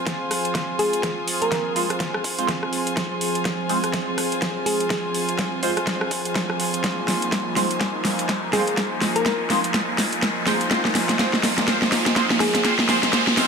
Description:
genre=bass house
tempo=124 BPM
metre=4/4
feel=swing 59% on 16ths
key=F minor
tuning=A4 = 441 Hz
part: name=sweeping resonant pad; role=sustained chords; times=0.0-13.5 s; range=F3 to Ab4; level=-29 LUFS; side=right 2 dB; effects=chorus, vintage 12-bit sampler grit, sidechain pumping
part: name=riser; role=sound effects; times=2.3-13.5 s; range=none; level=-28 LUFS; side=equal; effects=none
part: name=rich chamber string section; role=texture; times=0.0-13.5 s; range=F4 to Ab5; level=-29 LUFS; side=left 1 dB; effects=sidechain pumping
part: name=big-room dance drum kit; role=drums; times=0.1-13.5 s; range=hi-hat, rim click, snare drum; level=-23 LUFS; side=equal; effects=overdrive
part: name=electronic kick drum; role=drums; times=0.1-13.2 s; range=none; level=-28 LUFS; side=equal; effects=overdrive, high-pass filter on kick
part: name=thumb-piano-like synth pluck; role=melody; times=0.8-4.9, 8.5-12.6 s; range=Ab4 to Bb4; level=-26 LUFS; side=left 1 dB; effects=chorus, dub echo
part: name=band-passed chord stab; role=stabs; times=1.8-13.5 s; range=Ab3 to C5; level=-27 LUFS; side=right 2 dB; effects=phaser, wide subtle chorus, sidechain pumping, dub echo
room=moderate lush hall reverb, RT60 2.1 s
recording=none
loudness=-20 LUFS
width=side -6 dB against mid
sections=0.0-13.5 A section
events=build-up 0.0-13.5; drum fill 0.0-13.5; filter sweep on synth stab 0.0-13.5; riser 2.3-13.5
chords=0.0 Fm

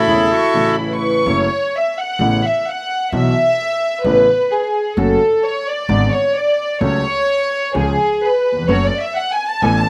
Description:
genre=tango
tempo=129 BPM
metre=4/4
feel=rubato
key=F# minor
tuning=A4 = 443 Hz
part: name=bandoneon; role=melody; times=0.0-0.8 s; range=E4 to A4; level=-17 LUFS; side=equal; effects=slapback echo
part: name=warm clarinet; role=second line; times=0.0-1.2 s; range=E4 to G#4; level=-25 LUFS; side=equal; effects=slapback echo
part: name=warm studio violin section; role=second line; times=0.0-9.9 s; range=G#4 to C#6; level=-19 LUFS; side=equal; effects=slapback echo
part: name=warm concert grand piano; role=accompaniment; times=0.0-9.8 s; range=E1 to A4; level=-21 LUFS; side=equal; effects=none
part: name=muted studio string section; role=stabs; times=0.0-1.2, 8.7-9.8 s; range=A3 to A4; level=-31 LUFS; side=equal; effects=none
part: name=upright bass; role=bass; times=1.3-9.8 s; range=F#1 to C#2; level=-24 LUFS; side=equal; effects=none
room=light reverb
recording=recorded outdoors, with no room sound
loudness=-17 LUFS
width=mono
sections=0.0-1.3 A section; 1.3-9.9 B section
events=break 0.0-1.3; violin section solo 1.3-9.9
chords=0.0 A; 1.3 F#m7; 2.2 Aadd9; 3.1 Esus2/B; 4.1 Aadd9; 5.0 F#m; 5.9 G#dim; 6.8 F#m/C#; 7.7 C#; 8.7 F#m

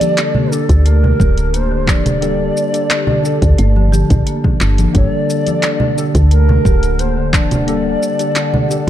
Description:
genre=organic downtempo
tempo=88 BPM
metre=4/4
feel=straight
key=G harmonic minor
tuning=A4 = 440 Hz
part: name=breathy ney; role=melody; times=0.0-8.9 s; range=A4 to D5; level=-20 LUFS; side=right 1 dB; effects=tape echo
part: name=muted felt-like synth keys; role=accompaniment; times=0.0-8.9 s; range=Bb3 to A4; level=-23 LUFS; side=left 3 dB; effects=chorus, sidechain pumping
part: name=warbly tape-like pad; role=sustained chords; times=0.0-8.9 s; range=D3 to A5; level=-24 LUFS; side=right 1 dB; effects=chorus, built-in reverb, sidechain pumping
part: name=marimba with medium mallets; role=arpeggios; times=0.0-8.7 s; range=D3 to G4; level=-22 LUFS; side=equal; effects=none
part: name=deep house drum kit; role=drums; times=0.0-8.8 s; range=handclaps, hi-hat, shaker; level=-21 LUFS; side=equal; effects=none
part: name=congas and bongos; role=percussion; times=0.0-8.8 s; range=none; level=-20 LUFS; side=equal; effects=none
part: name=woody FM bass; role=bass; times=0.7-8.9 s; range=D1 to D2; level=-13 LUFS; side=equal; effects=sidechain pumping
part: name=electronic kick drum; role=drums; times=0.7-8.9 s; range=none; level=-15 LUFS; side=equal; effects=none
room=light reverb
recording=dark, warm production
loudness=-11 LUFS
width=side -11 dB against mid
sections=0.0-8.9 A section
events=none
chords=0.0 Gmadd9

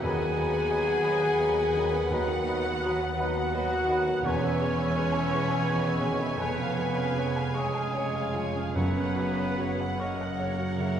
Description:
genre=classical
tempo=47-59 BPM (dotted quarters)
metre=12/8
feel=rubato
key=B major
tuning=A4 = 440 Hz
part: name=rich symphonic violin section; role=melody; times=0.0-11.0 s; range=F#5 to G#5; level=-40 LUFS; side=left 2 dB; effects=none
part: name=warm baby grand piano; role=melody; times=0.0-11.0 s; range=D#2 to C#6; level=-32 LUFS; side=left 1 dB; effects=none
part: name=mellow clarinet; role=second line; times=0.0-11.0 s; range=B4 to E5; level=-41 LUFS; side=left 2 dB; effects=none
part: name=mellow oboe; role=second line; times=0.0-11.0 s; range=G#4 to G#5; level=-36 LUFS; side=right 2 dB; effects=none
part: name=silver concert flute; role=second line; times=0.0-10.9 s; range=F#5 to B5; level=-42 LUFS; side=left 3 dB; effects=none
part: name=warm symphonic violin section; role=second line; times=0.0-11.0 s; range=G#4 to G#5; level=-38 LUFS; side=equal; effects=none
part: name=mellow bassoon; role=accompaniment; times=0.0-11.0 s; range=C#3 to G#3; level=-39 LUFS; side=right 2 dB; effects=none
part: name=rich symphonic viola section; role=accompaniment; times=0.0-11.0 s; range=B4 to F#5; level=-38 LUFS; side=right 2 dB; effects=none
part: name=clear trombone section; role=sustained chords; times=0.0-11.0 s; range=C#3 to C#4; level=-38 LUFS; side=right 4 dB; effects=none
part: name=mellow French horn section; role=sustained chords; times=0.0-11.0 s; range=G#3 to G#4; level=-30 LUFS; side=left 1 dB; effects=none
part: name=rich symphonic cello section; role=bass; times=0.0-11.0 s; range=D#2 to F#2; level=-35 LUFS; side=right 2 dB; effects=none
part: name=warm symphonic double bass section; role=bass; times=0.0-11.0 s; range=E1 to D#2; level=-36 LUFS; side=right 2 dB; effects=none
part: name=timpani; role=percussion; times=8.8-10.0 s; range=F#2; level=-37 LUFS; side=equal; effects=none
room=wet concert hall reverb, RT60 1.9 s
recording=heard from further back in the room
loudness=-25 LUFS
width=side -9 dB against mid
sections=0.0-11.0 A section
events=none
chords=0.0 B/D#; 4.3 C#m7/E; 6.4 C#7/E#; 8.8 F#

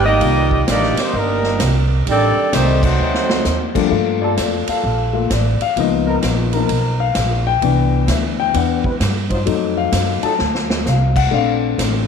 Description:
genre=jazz, big band swing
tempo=130 BPM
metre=4/4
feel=swing 65% on 8ths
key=G minor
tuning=A4 = 440 Hz
part: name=bright saxophone section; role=melody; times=0.0-3.7 s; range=G3 to Eb5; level=-19 LUFS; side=left 1 dB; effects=tape echo
part: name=dark trombone section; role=second line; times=0.0-3.7 s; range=Eb3 to Eb4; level=-22 LUFS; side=right 13 dB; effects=none
part: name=upright bass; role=bass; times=0.0-12.1 s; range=G1 to G2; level=-19 LUFS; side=right 1 dB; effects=none
part: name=warm grand piano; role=accompaniment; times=0.2-12.1 s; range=Eb3 to A5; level=-19 LUFS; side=left 11 dB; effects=none
part: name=swinging big-band drum kit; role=drums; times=0.2-11.9 s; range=crash cymbal, hi-hat, kick drum, ride cymbal, snare drum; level=-23 LUFS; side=right 1 dB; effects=none
part: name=warm trombone section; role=sustained chords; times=4.2-10.3 s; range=E#3 to C5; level=-25 LUFS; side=right 1 dB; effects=stereo widening
room=light reverb, studio reverb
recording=1960s-style stereo with parts hard left and right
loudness=-14 LUFS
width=side -6 dB against mid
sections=0.0-3.9 A section; 3.9-12.1 B section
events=band accent 2.8; drum fill 3.0-3.4, 10.4-10.8; grand piano solo 3.9-12.1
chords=0.2 Cm11; 2.1 Am7b5; 3.0 D7b9; 3.9 Gm9; 5.8 C#13; 7.6 Cmaj7; 9.5 F7b9; 11.3 Bbmaj9

